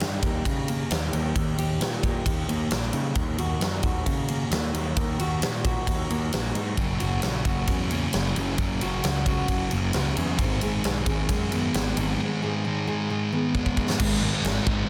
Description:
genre	quiet-loud alternative rock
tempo	133 BPM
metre	4/4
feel	straight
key	G# minor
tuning	A4 = 440 Hz
part	fingerpicked steel-string acoustic guitar	arpeggios	0.0-14.0 s	F#2 to G#4	-34 LUFS	equal	none
part	fuzz picked electric bass	bass	0.0-14.8 s	F#1 to C#3	-31 LUFS	equal	overdrive
part	huge arena drum kit	drums	0.0-14.8 s	crash cymbal, kick drum, ride cymbal, snare drum	-30 LUFS	equal	soft clipping on snare
part	thick fuzz guitar	riff	6.8-14.9 s	F#2 to G#3	-30 LUFS	equal	distortion
part	thick fuzz guitar	riff	14.0-14.9 s	G#2 to G#3	-30 LUFS	equal	distortion
room	light reverb, studio reverb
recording	dense, heavily limited modern master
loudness	-26 LUFS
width	mono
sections	0.0-14.0 A section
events	drum fill 13.5-14.0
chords	0.0 D#; 3.2 D#m; 6.8 F#; 10.4 G#m; 14.0 G#5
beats	0.00 0.46 0.91 | 1.36 1.81 2.26 2.71 | 3.16 3.62 4.07 4.52 | 4.97 5.42 5.88 6.33 | 6.78 7.23 7.68 8.13 | 8.59 9.04 9.49 9.94 | 10.39 10.84 11.29 11.74 | 12.19 12.64 13.09 13.54 | 13.99 14.44

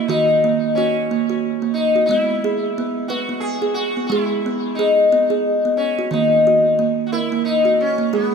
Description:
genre	world meditative, meditative tuned percussion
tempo	89 BPM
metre	3/4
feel	swing 55% on 16ths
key	G# minor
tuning	A4 = 439 Hz
part	sitar	melody	0.0-8.3 s	B3 to G#4	-18 LUFS	left 3 dB	ping-pong delay
part	kalimba	arpeggios	0.0-8.3 s	D#3 to B4	-20 LUFS	right 5 dB	none
room	wet echo chamber reverb, RT60 2.1 s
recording	none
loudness	-16 LUFS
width	side -6 dB against mid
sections	0.0-8.3 A section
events	none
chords	0.0 D#m; 2.1 G#m; 6.1 D#m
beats	| 0.08 0.76 1.43 | 2.10 2.77 3.44 | 4.11 4.78 5.45 | 6.12 6.79 7.47 | 8.14

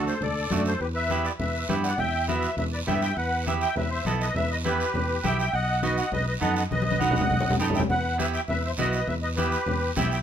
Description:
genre	latin, cumbia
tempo	203 BPM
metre	4/4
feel	straight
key	E minor, E harmonic minor from 3.2 s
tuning	A4 = 439 Hz
part	musette accordion	melody	0.0-10.2 s	B4 to G5	-28 LUFS	equal	none
part	musette accordion	second line	0.0-10.2 s	G4 to E5	-34 LUFS	left 3 dB	none
part	clean electric guitar	accompaniment	0.0-10.2 s	A3 to A4	-29 LUFS	right 5 dB	none
part	fingered electric bass	bass	0.0-10.2 s	B1 to G2	-29 LUFS	left 1 dB	none
part	guiro	percussion	0.1-10.2 s	none	-38 LUFS	right 5 dB	none
part	congas	percussion	0.2-10.1 s	none	-31 LUFS	left 2 dB	none
room	moderate studio reverb, RT60 0.5 s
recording	minimal, uncompressed stereo recording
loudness	-23 LUFS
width	side -9 dB against mid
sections	0.0-3.2 A section; 3.2-10.2 B section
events	drum fill 6.7-7.9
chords	0.0 D; 0.8 Em; 5.5 B7; 7.9 Em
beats	0.22 0.52 | 0.81 1.11 1.40 1.70 | 1.99 2.29 2.58 2.88 | 3.17 3.47 3.76 4.06 | 4.35 4.65 4.94 5.24 | 5.53 5.83 6.12 6.42 | 6.71 7.01 7.30 7.60 | 7.89 8.19 8.48 8.78 | 9.07 9.37 9.67 9.96

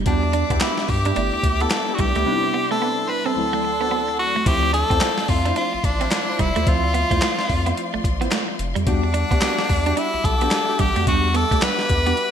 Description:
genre	R&B, new jack swing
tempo	109 BPM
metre	4/4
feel	swing 61% on 16ths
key	unclear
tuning	A4 = 440 Hz
part	FM electric piano with auto-pan	accompaniment	0.0-12.3 s	D2 to E5	-29 LUFS	left 1 dB	phaser
part	clean electric guitar	riff	0.0-12.1 s	G3 to D4	-28 LUFS	right 8 dB	analog chorus
part	round analog bass	bass	0.0-12.1 s	F1 to G2	-23 LUFS	equal	none
part	edgy tenor saxophone	melody	0.1-12.3 s	D4 to C5	-22 LUFS	equal	none
part	warm studio string section	sustained chords	0.1-12.3 s	F3 to D6	-30 LUFS	left 2 dB	none
part	funky polysynth comp	stabs	0.1-12.2 s	B3 to C5	-30 LUFS	left 1 dB	chorus
part	boom bap sampler-style drum kit	drums	0.1-12.3 s	crash cymbal, handclaps, hi-hat, kick drum, snare drum	-22 LUFS	equal	gated reverb
room	light reverb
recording	bright 1980s-style digital production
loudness	-18 LUFS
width	side -8 dB against mid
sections	0.0-4.5 A section; 4.5-12.3 B section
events	none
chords	0.1 Em7; 1.2 G6; 2.3 Cmaj7; 3.4 D7; 4.5 Dm9; 8.9 Em9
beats	| 0.06 0.61 1.16 1.71 | 2.26 2.81 3.36 3.92 | 4.46 5.01 5.57 6.12 | 6.67 7.22 7.77 8.32 | 8.87 9.42 9.97 10.52 | 11.07 11.62 12.17

